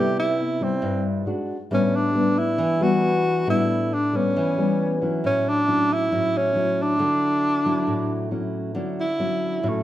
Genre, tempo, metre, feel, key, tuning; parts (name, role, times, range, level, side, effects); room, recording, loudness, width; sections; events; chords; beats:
bossa nova; 136 BPM; 4/4; straight; D major; A4 = 439 Hz
mellow tenor saxophone; melody; 0.0-9.8 s; A3 to G4; -22 LUFS; equal
nylon-string guitar; accompaniment; 0.0-9.8 s; G2 to F#4; -23 LUFS; left 1 dB
moderate large studio reverb, RT60 1.4 s; dark, warm production; -20 LUFS; side -13 dB against mid
0.0-8.8 A section; 8.8-9.8 B section
tenor saxophone solo 8.8-9.8
0.0 Cmaj7; 1.3 D; 1.7 A9sus4; 5.2 F#m7/A; 7.0 Dmaj9
0.39 0.83 1.27 | 1.71 2.15 2.59 3.03 | 3.47 3.91 4.35 4.79 | 5.24 5.67 6.12 6.56 | 7.00 7.44 7.88 8.32 | 8.76 9.20 9.64